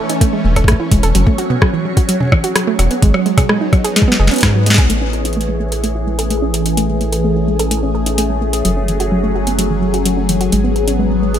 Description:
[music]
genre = IDM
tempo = 128 BPM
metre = 4/4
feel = straight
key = unclear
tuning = A4 = 440 Hz
[part]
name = phased analog pad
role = sustained chords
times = 0.0-11.4 s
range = E3 to G#4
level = -19 LUFS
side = left 1 dB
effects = phaser, chorus, sidechain pumping
[part]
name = soft round pluck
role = arpeggios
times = 0.0-11.4 s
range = E3 to A4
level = -19 LUFS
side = right 2 dB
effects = chorus, vintage 12-bit sampler grit, digital delay
[part]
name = flickering grainy texture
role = texture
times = 0.0-4.9 s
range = C#4 to C#5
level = -28 LUFS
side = left 2 dB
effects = built-in reverb, sidechain pumping
[part]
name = booming analog drum machine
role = drums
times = 0.1-11.4 s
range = hi-hat, rim click, snare drum, toms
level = -18 LUFS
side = equal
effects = none
[part]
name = electronic kick drum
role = drums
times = 0.2-4.9 s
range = none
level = -13 LUFS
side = equal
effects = overdrive
[part]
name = round analog bass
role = bass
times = 0.4-11.4 s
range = E1 to G#2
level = -17 LUFS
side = equal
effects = tube saturation
[sound]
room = little or no reverb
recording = none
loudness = -12 LUFS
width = side -10 dB against mid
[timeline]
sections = 0.0-4.9 A section; 4.9-11.4 B section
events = drum fill 4.0-4.9; band accent 4.7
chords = 0.0 Amaj7; 1.1 F#madd9; 3.0 G#m7; 4.9 Amaj7; 8.6 F#madd9; 10.5 G#m7

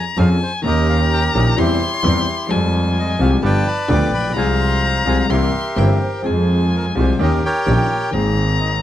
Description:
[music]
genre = tango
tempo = 128 BPM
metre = 4/4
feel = rubato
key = F minor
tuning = A4 = 443 Hz
[part]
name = bandoneon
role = melody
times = 0.0-8.7 s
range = E4 to D6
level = -23 LUFS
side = equal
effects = none
[part]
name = warm violin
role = second line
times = 0.0-8.8 s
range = G5 to C6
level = -23 LUFS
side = left 5 dB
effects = none
[part]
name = clear concert grand piano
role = accompaniment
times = 0.2-8.8 s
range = G1 to Ab4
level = -20 LUFS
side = left 2 dB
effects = none
[part]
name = bandoneon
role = stabs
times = 0.2-8.8 s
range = G3 to Bb4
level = -31 LUFS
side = right 8 dB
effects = none
[part]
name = clear double bass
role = bass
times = 0.2-8.8 s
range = G1 to F2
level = -18 LUFS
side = equal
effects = none
[part]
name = vibraphone with medium mallets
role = second line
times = 5.8-6.6 s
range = Ab4 to C5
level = -26 LUFS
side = right 4 dB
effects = none
[sound]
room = light reverb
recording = close, detailed microphones, vinyl crackle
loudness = -15 LUFS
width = side -12 dB against mid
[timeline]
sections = 0.0-8.8 A section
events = none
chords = 0.0 Dbmaj7/F; 0.6 Eb7; 1.6 C/E; 2.5 Fmadd9; 3.4 G7; 4.4 Fm/C; 5.3 C7; 6.2 Fmadd9; 7.2 Eb7; 8.1 Abadd9

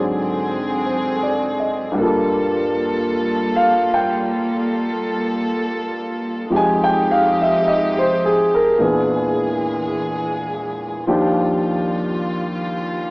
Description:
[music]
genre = jazz ballad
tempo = 53 BPM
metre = 4/4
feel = swing 68% on 8ths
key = unclear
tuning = A4 = 440 Hz
[part]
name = warm concert grand piano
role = accompaniment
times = 0.0-13.1 s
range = Eb2 to Ab5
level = -18 LUFS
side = equal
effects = none
[part]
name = warm chamber string section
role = sustained chords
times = 0.0-13.1 s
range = D3 to A4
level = -23 LUFS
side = equal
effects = none
[sound]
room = moderate club reverb, RT60 0.6 s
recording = worn, warbling old tape, cassette tape, warbly pitch drift, small speaker sound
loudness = -17 LUFS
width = side -27 dB against mid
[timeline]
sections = 0.0-13.1 A section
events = none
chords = 0.0 Ab7#11; 2.0 Gm9; 6.5 Fm9; 8.8 E7#11; 11.1 Ebmaj9

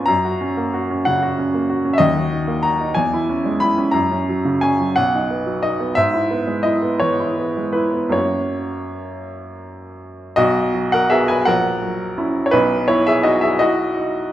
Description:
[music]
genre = classical, romantic character piece for solo piano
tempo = 52-63 BPM (dotted quarters)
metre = 6/8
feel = rubato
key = B major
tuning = A4 = 442 Hz
[part]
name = clear upright piano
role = solo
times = 0.0-14.3 s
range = A#1 to B5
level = -16 LUFS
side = equal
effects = none
[sound]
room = wet recital hall reverb, RT60 1.6 s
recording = none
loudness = -16 LUFS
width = side -12 dB against mid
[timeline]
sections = 0.0-10.4 A section; 10.4-14.3 B section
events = none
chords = 0.1 F#; 2.0 D#m; 3.0 C#m/E; 3.9 F#; 5.0 B; 6.0 E/G#; 8.1 F#; 10.4 B; 11.5 F#7/A#; 12.5 B

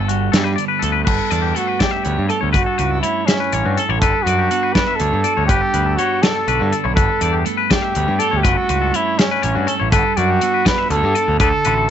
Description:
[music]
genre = math rock and midwest emo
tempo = 81 BPM (dotted quarters)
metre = 6/8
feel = straight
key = unclear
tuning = A4 = 438 Hz
[part]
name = twelve-string electric guitar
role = accompaniment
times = 0.0-11.9 s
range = G2 to A4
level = -24 LUFS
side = right 13 dB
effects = none
[part]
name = twangy electric guitar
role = arpeggios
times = 0.0-11.9 s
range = F#4 to E5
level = -22 LUFS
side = left 15 dB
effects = none
[part]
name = growling picked electric bass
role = bass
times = 0.0-11.9 s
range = G1 to G2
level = -20 LUFS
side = equal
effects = overdrive
[part]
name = modern studio drum kit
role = drums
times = 0.1-11.8 s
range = crash cymbal, hi-hat, kick drum, snare drum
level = -19 LUFS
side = equal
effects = none
[part]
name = breathy trumpet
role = melody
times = 1.1-11.9 s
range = C#4 to B4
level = -19 LUFS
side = right 1 dB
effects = slapback echo
[sound]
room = little or no reverb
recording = 1960s-style stereo with parts hard left and right, nothing above 7.9 kHz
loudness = -14 LUFS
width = side -9 dB against mid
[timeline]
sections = 0.0-1.1 A section; 1.1-11.9 B section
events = none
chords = 0.0 Gmaj9; 1.1 A9sus4/G; 2.5 F#m7/G; 4.0 Bm7/G; 5.5 Gadd9; 7.0 A9sus4/G; 8.4 F#m7/G; 9.9 Bm7/G; 11.4 D

